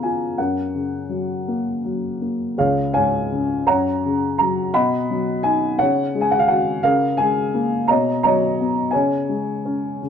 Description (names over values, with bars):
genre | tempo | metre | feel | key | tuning
classical, lyrical solo piano | 56 BPM (dotted quarters) | 6/8 | uneven beats, rubato | unclear | A4 = 442 Hz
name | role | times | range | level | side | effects
dark upright piano | solo | 0.0-10.1 s | C#2 to B5 | -18 LUFS | left 1 dB | none
room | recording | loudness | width
light reverb | none | -18 LUFS | side -7 dB against mid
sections
0.0-2.6 A section; 2.6-10.1 B section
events
none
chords
0.4 F#; 2.6 C#; 3.7 F#; 4.7 B; 5.8 C#sus4; 6.8 C#6; 7.9 Badd9; 8.9 C#5